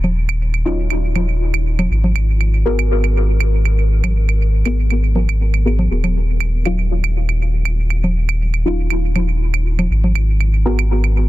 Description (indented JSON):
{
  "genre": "dub techno",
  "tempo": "120 BPM",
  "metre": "4/4",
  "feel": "swing 54% on 16ths",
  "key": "Eb minor",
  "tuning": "A4 = 440 Hz",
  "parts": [
    { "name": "pure sine sub bass", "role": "bass", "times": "0.0-11.3 s", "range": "Eb1 to Ab1", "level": "-16 LUFS", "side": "equal", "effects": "none" },
    { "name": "congas and claves", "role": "percussion", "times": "0.0-11.1 s", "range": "none", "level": "-24 LUFS", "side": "right 3 dB", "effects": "dub echo" },
    { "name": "deep mellow chord stab", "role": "stabs", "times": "0.7-10.8 s", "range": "Gb3 to Bb4", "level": "-24 LUFS", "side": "left 1 dB", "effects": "chorus, phaser, dub echo" }
  ],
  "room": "little or no reverb",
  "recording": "dense, heavily limited modern master",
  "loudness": "-14 LUFS",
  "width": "side -16 dB against mid",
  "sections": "0.0-11.3 A section",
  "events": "filter sweep on synth stab 0.0-11.3",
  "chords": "0.0 Ebm9; 1.9 Abm9; 5.9 Ebm9; 9.9 Abm9",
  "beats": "0.41 0.91 1.41 | 1.91 2.40 2.90 3.40 | 3.90 4.41 4.91 5.41 | 5.91 6.41 6.91 7.41 | 7.91 8.40 8.90 9.40 | 9.90 10.40 10.90"
}